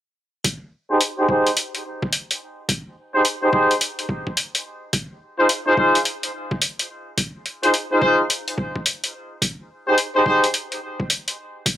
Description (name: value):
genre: glitch hop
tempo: 107 BPM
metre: 4/4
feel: swing 64% on 16ths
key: unclear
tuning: A4 = 435 Hz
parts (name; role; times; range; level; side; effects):
- electronic hi-hat; drums; 0.4-11.8 s; none; -21 LUFS; left 1 dB; small room ambience
- electronic kick drum; drums; 0.4-11.8 s; none; -27 LUFS; equal; high-pass filter on kick, small room ambience
- clear horn section; stabs; 0.9-10.5 s; Eb4 to C5; -19 LUFS; equal; sidechain pumping, low-pass filter, analog delay
room: light reverb, small room ambience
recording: dry, gritty hardware recording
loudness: -19 LUFS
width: side -12 dB against mid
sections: 0.4-11.8 A section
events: filter sweep on horn section 0.4-11.8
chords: 0.4 Ebadd11; 4.9 Ebsus24; 9.4 Ebadd11